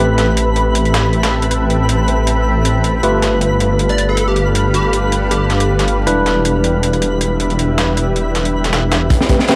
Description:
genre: drum and bass, jungle.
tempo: 158 BPM.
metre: 4/4.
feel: swing 54% on 16ths.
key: unclear.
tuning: A4 = 440 Hz.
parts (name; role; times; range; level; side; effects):
granular cloud pad; sustained chords; 0.0-9.6 s; C4 to F5; -24 LUFS; equal; built-in reverb.
barky tine electric piano; stabs; 0.0-9.6 s; G3 to B4; -21 LUFS; equal; low-pass filter, dub echo.
detuned saw bass; bass; 0.0-9.6 s; E1 to A1; -19 LUFS; equal; high-pass filter.
twinkling granular texture; texture; 0.0-9.1 s; B4 to B5; -26 LUFS; equal; built-in reverb.
dusty soul sampler-style drum kit; drums; 0.2-9.6 s; hi-hat, snare drum; -23 LUFS; equal; overdrive, high-pass filter on hats, high-pass filter on snare.
plucky unison lead; melody; 3.9-5.8 s; G4 to D5; -26 LUFS; equal; analog chorus, dub echo.
crunchy breakbeat drum kit; drums; 9.1-9.6 s; hi-hat, kick drum, snare drum; -14 LUFS; equal; none.
room: moderate digital room reverb, RT60 1.1 s, studio ambience.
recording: vinyl crackle.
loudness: -15 LUFS.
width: mono.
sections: 0.0-9.1 A section.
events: none.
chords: 0.0 Am9; 3.0 G9; 6.1 Em7.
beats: 0.37 0.75 1.13 | 1.51 1.89 2.27 2.65 | 3.03 3.41 3.79 4.17 | 4.55 4.93 5.31 5.69 | 6.07 6.45 6.83 7.21 | 7.59 7.97 8.35 8.73 | 9.11 9.49.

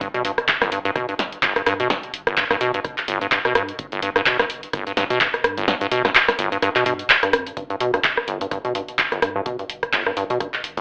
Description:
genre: acid house.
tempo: 127 BPM.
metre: 4/4.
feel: swing 56% on 16ths.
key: G mixolydian.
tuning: A4 = 444 Hz.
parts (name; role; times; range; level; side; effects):
acid bass, square; riff; 0.0-10.8 s; G1 to B2; -26 LUFS; equal; tube saturation, sidechain pumping, analog delay.
electronic kick drum; drums; 0.0-10.5 s; none; -40 LUFS; equal; none.
punchy analog drum machine; drums; 0.0-10.8 s; handclaps, hi-hat, rim click, snare drum; -21 LUFS; equal; none.
warm sub bass; bass; 0.2-10.8 s; G1 to G2; -43 LUFS; equal; sidechain pumping.
room: moderate studio reverb, RT60 0.6 s.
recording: telephone sound.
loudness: -21 LUFS.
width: mono.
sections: 0.0-7.6 A section; 7.6-10.8 B section.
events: drop 0.0-7.6; kick drops out 5.7-7.6.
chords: 0.0 G.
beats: | 0.01 0.48 0.96 1.43 | 1.90 2.37 2.85 3.32 | 3.79 4.26 4.74 5.21 | 5.68 6.15 6.62 7.10 | 7.57 8.04 8.52 8.99 | 9.46 9.93 10.40.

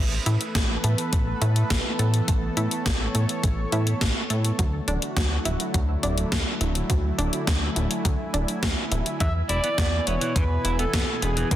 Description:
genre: synthwave.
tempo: 104 BPM.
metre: 4/4.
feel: straight.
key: A major.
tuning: A4 = 440 Hz.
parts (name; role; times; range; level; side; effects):
lush unison pad; sustained chords; 0.0-11.6 s; B2 to G#5; -30 LUFS; equal; chorus, sidechain pumping.
analog pluck; arpeggios; 0.0-9.1 s; F#3 to A4; -33 LUFS; right 3 dB; chorus, digital delay.
chorused synth bass; bass; 0.0-11.6 s; D1 to A2; -25 LUFS; equal; sidechain pumping.
gated 80s digital drum machine; drums; 0.3-11.6 s; hi-hat, snare drum; -28 LUFS; left 1 dB; gated reverb, gated reverb snare, overdrive.
electronic kick drum; drums; 0.6-11.6 s; none; -26 LUFS; equal; none.
warm alto saxophone; melody; 9.2-11.6 s; G#4 to E5; -28 LUFS; right 1 dB; digital delay.
clean electric guitar; riff; 9.2-11.6 s; E3 to E4; -32 LUFS; right 2 dB; analog chorus, digital delay.
room: light reverb.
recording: dense, heavily limited modern master.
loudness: -22 LUFS.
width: side -12 dB against mid.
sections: 0.0-11.6 A section.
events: none.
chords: 0.0 Asus2; 4.6 Dadd9; 9.2 E.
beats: 0.55 1.13 1.70 | 2.28 2.86 3.44 4.01 | 4.59 5.17 5.74 6.32 | 6.90 7.47 8.05 8.63 | 9.20 9.78 10.36 10.94 | 11.51.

